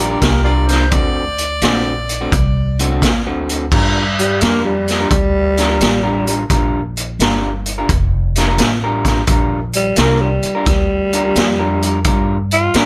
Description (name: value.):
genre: electric blues shuffle.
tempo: 86 BPM.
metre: 4/4.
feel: swing 67% on 8ths.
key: G minor.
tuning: A4 = 440 Hz.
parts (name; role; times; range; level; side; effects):
growling tenor saxophone; melody; 0.0-12.9 s; G3 to G4; -20 LUFS; equal; none.
mellow harmonica; second line; 0.0-3.0 s; F4 to D5; -25 LUFS; equal; digital delay.
electric guitar through a small old amp; riff; 0.0-12.9 s; D3 to Bb4; -22 LUFS; equal; none.
upright bass; bass; 0.0-12.9 s; F1 to A2; -22 LUFS; equal; none.
raw garage drum kit; drums; 0.2-12.9 s; crash cymbal, hi-hat, kick drum, snare drum; -19 LUFS; equal; none.
room: little or no reverb.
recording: none.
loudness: -16 LUFS.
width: mono.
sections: 0.0-3.7 A section; 3.7-12.9 B section.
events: tenor saxophone solo 3.7-12.9.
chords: 0.0 Gm7; 0.9 D7; 3.7 Gm7.